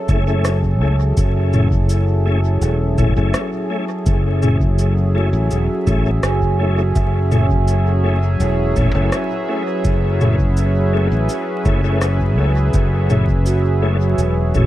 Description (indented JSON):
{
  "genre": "ambient dub",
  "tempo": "83 BPM",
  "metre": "4/4",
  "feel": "straight",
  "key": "F# minor",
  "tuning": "A4 = 440 Hz",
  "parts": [
    { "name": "warm analog pad", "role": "sustained chords", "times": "0.0-14.7 s", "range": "F#3 to E5", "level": "-23 LUFS", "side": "equal", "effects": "chorus" },
    { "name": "vibraphone with soft mallets", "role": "arpeggios", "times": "0.0-14.7 s", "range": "E4 to G#5", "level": "-26 LUFS", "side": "right 3 dB", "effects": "dub echo" },
    { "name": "tonewheel organ", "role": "stabs", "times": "0.1-14.7 s", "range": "A3 to G#4", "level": "-25 LUFS", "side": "left 2 dB", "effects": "chorus vibrato, fast rotary speaker, dub echo" },
    { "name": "fingered electric bass", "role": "bass", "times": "0.1-14.7 s", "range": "E1 to C#2", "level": "-16 LUFS", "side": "equal", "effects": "none" },
    { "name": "electronic kick drum", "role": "drums", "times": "0.1-14.7 s", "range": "none", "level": "-21 LUFS", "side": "equal", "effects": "none" },
    { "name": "organic electronic drum kit", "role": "drums", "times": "0.1-14.7 s", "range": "rim click, shaker, toms", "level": "-22 LUFS", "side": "equal", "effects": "none" }
  ],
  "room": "digital ambience",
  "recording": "dark, warm production, vinyl crackle",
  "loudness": "-14 LUFS",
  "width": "side -14 dB against mid",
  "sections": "0.0-14.7 A section",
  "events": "none",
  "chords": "0.0 F#m9",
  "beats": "0.45 | 1.17 1.90 2.62 3.34 | 4.06 4.79 5.51 6.23 | 6.96 7.68 8.40 9.12 | 9.85 10.57 11.29 12.02 | 12.74 13.46 14.18"
}